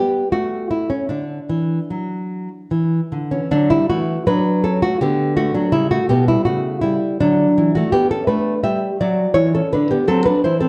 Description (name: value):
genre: classical, baroque-style dance for nylon-string guitar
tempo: 74-86 BPM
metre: 3/4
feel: rubato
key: D major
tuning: A4 = 440 Hz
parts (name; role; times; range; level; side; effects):
- nylon-string guitar; solo; 0.0-10.7 s; B2 to E5; -18 LUFS; equal; slapback echo
room: moderate recital hall reverb, RT60 1.7 s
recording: dark, warm production, tape saturation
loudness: -18 LUFS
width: mono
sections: 0.0-3.5 A section; 3.5-10.7 A section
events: none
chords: 0.3 N.C.; 1.1 D; 5.7 A7; 7.2 D; 7.9 G; 10.1 D7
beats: 0.34 | 1.10 1.91 2.70 | 3.50 4.26 5.00 | 5.72 6.45 7.19 | 7.91 8.63 9.35 | 10.06